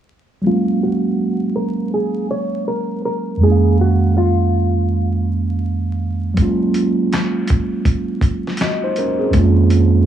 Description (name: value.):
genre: lo-fi hip hop.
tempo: 81 BPM.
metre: 4/4.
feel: swing 63% on 16ths.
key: unclear.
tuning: A4 = 443 Hz.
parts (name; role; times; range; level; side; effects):
mellow tine electric piano; accompaniment; 0.4-10.1 s; F2 to F5; -16 LUFS; right 2 dB; cassette tape, low-pass filter.
hollow-body jazz guitar; melody; 0.5-5.6 s; F4 to Db5; -22 LUFS; left 1 dB; low-pass filter.
dusty soul sampler-style drum kit; drums; 6.4-9.9 s; handclaps, hi-hat, kick drum, snare drum; -18 LUFS; equal; overdrive.
room: light reverb, digital ambience.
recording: vinyl crackle, small room ambience.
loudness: -15 LUFS.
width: side -10 dB against mid.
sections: 0.5-10.1 A section.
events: filter sweep 0.5-10.1.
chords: 0.5 Gbmaj9; 3.4 Db6/F; 6.4 Gbmaj9; 9.3 Db6/F.